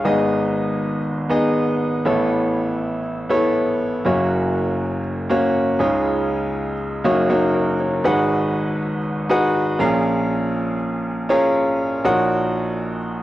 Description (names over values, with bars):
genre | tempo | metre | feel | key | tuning
pop | 120 BPM | 4/4 | straight | G# dorian | A4 = 435 Hz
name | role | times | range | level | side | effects
clear grand piano | solo | 0.0-13.2 s | F#1 to F#5 | -18 LUFS | equal | cassette tape
room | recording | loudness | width
moderate small room ambience, RT60 0.5 s | home recording on cassette | -18 LUFS | side -15 dB against mid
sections
0.0-8.0 A section; 8.0-13.2 B section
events
none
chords
0.0 G#m; 2.0 Aadd9; 4.0 F#; 5.8 C#add9; 7.0 F#6; 8.0 G#m7; 9.8 A#m7; 12.0 D#m7/A#